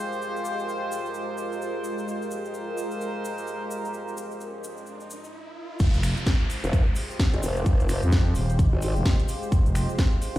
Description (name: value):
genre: bass house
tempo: 129 BPM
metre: 4/4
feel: swing 60% on 16ths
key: F minor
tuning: A4 = 441 Hz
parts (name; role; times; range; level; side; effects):
- sweeping resonant pad; sustained chords; 0.0-10.4 s; Ab3 to C5; -34 LUFS; equal; chorus, sidechain pumping
- bright horn section; stabs; 0.0-5.3 s; Ab3 to C5; -34 LUFS; right 1 dB; sidechain pumping, low-pass filter, digital delay
- granular cloud pad; texture; 0.1-5.3 s; F4 to Eb5; -38 LUFS; right 1 dB; built-in reverb, sidechain pumping
- tube shaker; percussion; 0.1-10.4 s; none; -44 LUFS; left 2 dB; none
- riser and downlifter; sound effects; 4.1-9.5 s; none; -39 LUFS; equal; none
- growling FM bass; bass; 5.8-9.9 s; Eb1 to F2; -24 LUFS; equal; tube saturation, sidechain pumping
- electronic kick drum; drums; 5.8-10.1 s; none; -21 LUFS; equal; none
- house drum kit; drums; 5.8-10.4 s; crash cymbal, finger snaps, hi-hat, snare drum; -33 LUFS; equal; none
- formant-sweep wobble bass; bass; 6.6-10.4 s; F1 to Ab1; -26 LUFS; equal; chorus, overdrive, sidechain pumping
room: light reverb, digital ambience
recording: played on a big sound system in a bare room, stone room reverb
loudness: -23 LUFS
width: side -15 dB against mid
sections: 0.0-5.8 A section; 5.8-10.4 B section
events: filter sweep on horn section 0.0-5.8; riser 4.1-5.8; drop 5.8-10.4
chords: 0.0 Fmadd9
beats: | 0.22 0.68 1.15 1.61 | 2.08 2.54 3.01 3.48 | 3.94 4.41 4.87 5.33 | 5.80 6.26 6.73 7.20 | 7.66 8.13 8.59 9.06 | 9.52 9.99